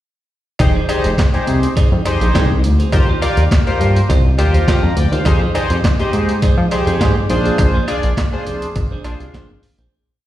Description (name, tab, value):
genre	early-eighties boogie funk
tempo	103 BPM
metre	4/4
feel	straight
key	F dorian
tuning	A4 = 440 Hz
part	chorused polysynth	accompaniment	0.6-9.5 s	D4 to Bb5	-20 LUFS	left 2 dB	plate reverb, slapback echo
part	clean electric guitar	riff	0.6-9.9 s	D4 to D5	-26 LUFS	right 6 dB	wide subtle chorus, slapback echo
part	chorused synth bass	bass	0.6-9.9 s	F1 to F3	-15 LUFS	equal	none
part	breakbeat sampler-style drum kit	drums	0.6-9.9 s	handclaps, hi-hat, kick drum, snare drum	-16 LUFS	equal	none
part	cowbell	percussion	0.6-9.5 s	none	-28 LUFS	right 3 dB	slapback echo
room	light reverb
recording	live gig heard through the venue's PA, recital hall reverb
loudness	-13 LUFS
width	side -13 dB against mid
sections	0.6-9.9 verse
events	fade-out 7.6-9.9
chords	0.6 Fm7; 2.9 Eb69; 5.3 Fm7; 7.3 Bb9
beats	| 0.60 1.18 1.76 2.35 | 2.93 3.51 4.09 4.68 | 5.26 5.84 6.42 7.01 | 7.59 8.17 8.76 9.34